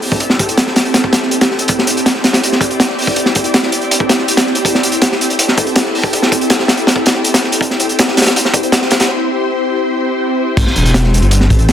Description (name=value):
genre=drum and bass, jungle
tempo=162 BPM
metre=4/4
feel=straight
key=A minor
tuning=A4 = 436 Hz
part: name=ethereal airy pad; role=sustained chords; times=0.0-11.7 s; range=C4 to D5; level=-16 LUFS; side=left 1 dB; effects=ensemble chorus, built-in reverb, vintage 12-bit sampler grit
part: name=crunchy breakbeat drum kit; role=drums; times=0.0-11.7 s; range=crash cymbal, hi-hat, kick drum, snare drum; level=-12 LUFS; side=equal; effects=high-pass filter on kick, high-pass filter on hats, high-pass filter on cymbals, high-pass filter on snare, high-pass filter on room
part: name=dark detuned saw bass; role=bass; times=10.6-11.7 s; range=E1 to A1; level=-11 LUFS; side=equal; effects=none
room=moderate echo chamber reverb, RT60 1.4 s, small room reverb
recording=dense, heavily limited modern master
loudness=-11 LUFS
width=side -10 dB against mid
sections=0.0-10.6 A section; 10.6-11.7 B section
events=build-up 0.0-10.6; break 9.1-10.6; drop 10.6-11.7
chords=0.0 Am7